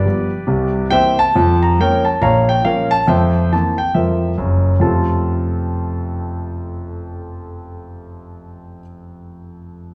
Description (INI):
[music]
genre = jazz, stride piano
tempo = 138 BPM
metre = 4/4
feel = swing 61% on 8ths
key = F major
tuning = A4 = 438 Hz
[part]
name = warm concert grand piano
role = solo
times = 0.0-9.9 s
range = Gb1 to Bb5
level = -18 LUFS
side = equal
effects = none
[sound]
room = wet scoring stage reverb, RT60 1.7 s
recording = recorded in a church or concert hall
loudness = -16 LUFS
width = mono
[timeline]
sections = 0.0-4.8 A section; 4.8-8.3 B section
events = none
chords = 0.5 C7; 1.4 Bbm/F; 3.1 C7/F; 4.8 F